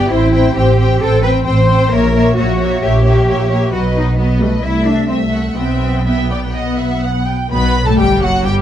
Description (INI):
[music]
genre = quick classical-period movement for string orchestra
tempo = 131 BPM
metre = 4/4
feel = rubato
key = unclear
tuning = A4 = 440 Hz
[part]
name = rich studio violin section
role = melody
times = 0.0-8.5 s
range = D#5 to B5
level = -23 LUFS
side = left 3 dB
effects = none
[part]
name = rich studio violin section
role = second line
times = 0.0-8.6 s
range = F#4 to G5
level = -21 LUFS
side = left 1 dB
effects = none
[part]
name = clear studio viola section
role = accompaniment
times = 0.0-8.6 s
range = F#3 to C4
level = -19 LUFS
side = left 2 dB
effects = none
[part]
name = rich studio cello section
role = bass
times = 0.0-8.6 s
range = F#2 to C5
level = -18 LUFS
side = equal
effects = none
[part]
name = rich studio double bass section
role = bass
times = 0.0-8.6 s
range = F#1 to C2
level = -15 LUFS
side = right 1 dB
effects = none
[sound]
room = light reverb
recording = dark, warm production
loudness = -12 LUFS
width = side -10 dB against mid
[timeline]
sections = 0.0-7.5 A section; 7.5-8.6 B section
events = none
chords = 0.1 Am7; 1.9 A#dim7; 3.7 B; 4.6 Am/C; 5.6 Em/B; 6.6 B; 7.5 Gmaj9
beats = | 0.10 0.55 1.00 1.45 | 1.91 2.36 2.81 3.27 | 3.72 4.18 4.64 5.10 | 5.58 6.07 6.55 7.03 | 7.51 7.98 8.44